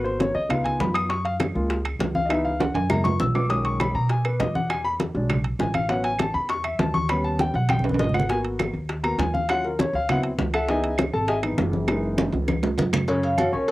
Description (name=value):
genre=Afro-Cuban jazz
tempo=200 BPM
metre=4/4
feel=straight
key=F# major, B major from 3.5 s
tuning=A4 = 437 Hz
part: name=warm grand piano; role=accompaniment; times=0.0-13.7 s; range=C#3 to E6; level=-24 LUFS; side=left 1 dB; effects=cassette tape
part: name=upright bass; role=bass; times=0.0-13.7 s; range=F#1 to B2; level=-27 LUFS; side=equal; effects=none
part: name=bongos and cowbell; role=percussion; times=0.1-13.7 s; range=none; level=-30 LUFS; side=left 2 dB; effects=none
part: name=congas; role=percussion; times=0.1-13.7 s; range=none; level=-28 LUFS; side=equal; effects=none
part: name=timbales and agogo bells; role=percussion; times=0.2-13.7 s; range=none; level=-30 LUFS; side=right 5 dB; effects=none
part: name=claves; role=percussion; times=0.5-13.5 s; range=none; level=-35 LUFS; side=right 4 dB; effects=none
part: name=vibraphone with medium hard mallets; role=melody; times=13.2-13.7 s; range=A#4 to E#5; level=-24 LUFS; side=equal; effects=cassette tape
room=moderate small room ambience, RT60 0.5 s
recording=home recording on cassette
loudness=-21 LUFS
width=side -17 dB against mid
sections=0.0-3.5 A section; 3.5-13.1 A section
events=grand piano solo 0.0-13.1; drum fill 2.6-3.5, 7.7-8.3, 11.9-13.1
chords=0.0 G#m7; 0.5 C#7; 1.1 F#maj7; 2.3 C#m7; 2.9 F#9; 3.5 B6; 4.7 E9; 5.9 A69; 7.1 D#aug7; 8.3 G#m9; 9.5 D#m7; 10.1 D13; 10.7 C#m9; 11.9 F#13; 13.1 F#maj7